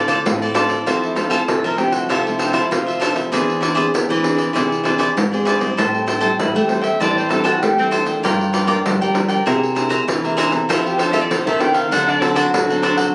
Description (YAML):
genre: samba and choro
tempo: 98 BPM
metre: 4/4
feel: straight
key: F major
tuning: A4 = 436 Hz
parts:
  - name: breathy alto saxophone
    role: melody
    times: 0.0-13.1 s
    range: A3 to G5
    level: -24 LUFS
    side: equal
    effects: none
  - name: cavaquinho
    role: accompaniment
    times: 0.0-13.1 s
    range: D4 to Bb5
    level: -23 LUFS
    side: equal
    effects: none
  - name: nylon-string guitar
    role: accompaniment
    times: 0.0-13.1 s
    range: G2 to A4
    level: -26 LUFS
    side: equal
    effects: none
  - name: nylon-string guitar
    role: bass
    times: 0.1-13.1 s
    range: E2 to A3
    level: -24 LUFS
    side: equal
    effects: none
  - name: pandeiro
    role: percussion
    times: 0.1-13.1 s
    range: none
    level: -25 LUFS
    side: equal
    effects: none
room: moderate studio reverb, RT60 0.7 s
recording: recorded on a phone in the room, studio reverb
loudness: -18 LUFS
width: mono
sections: 0.9-13.1 A section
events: alto saxophone solo 0.9-13.1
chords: 0.0 Dm7; 0.9 Fmaj7; 3.3 E7b13; 5.8 Am7; 8.2 Gm7; 9.5 Caug7; 10.7 Fmaj7; 11.9 D7b9